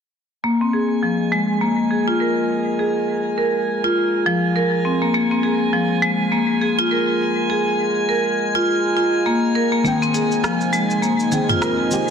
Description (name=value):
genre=organic downtempo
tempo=102 BPM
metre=4/4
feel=swing 58% on 16ths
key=unclear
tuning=A4 = 439 Hz
part: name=marimba with hard mallets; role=arpeggios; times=0.4-12.1 s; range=F3 to Bb4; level=-18 LUFS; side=left 1 dB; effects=low-pass filter, ping-pong delay, shimmer reverb
part: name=drifting glass-harmonics texture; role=texture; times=0.8-12.1 s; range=Ab3 to Ab5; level=-25 LUFS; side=right 1 dB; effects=chorus, built-in reverb, shimmer reverb
part: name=deep mellow chord stab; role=accompaniment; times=9.8-12.1 s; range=Eb3 to G5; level=-25 LUFS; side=left 1 dB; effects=chorus, ping-pong delay, shimmer reverb
part: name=warm analog pad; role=sustained chords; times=10.4-12.1 s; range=C4 to Eb5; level=-28 LUFS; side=left 1 dB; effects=chorus, shimmer reverb
part: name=deep house drum kit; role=drums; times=9.9-12.1 s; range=cabasa, rim click, toms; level=-26 LUFS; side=right 1 dB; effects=low-pass filter on perc, low-pass filter on snare, low-pass filter on toms
room=wet recital hall reverb, RT60 1.5 s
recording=dense, heavily limited modern master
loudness=-17 LUFS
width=side -7 dB against mid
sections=0.4-12.1 A section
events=none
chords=0.4 Bb5; 9.9 Abmaj7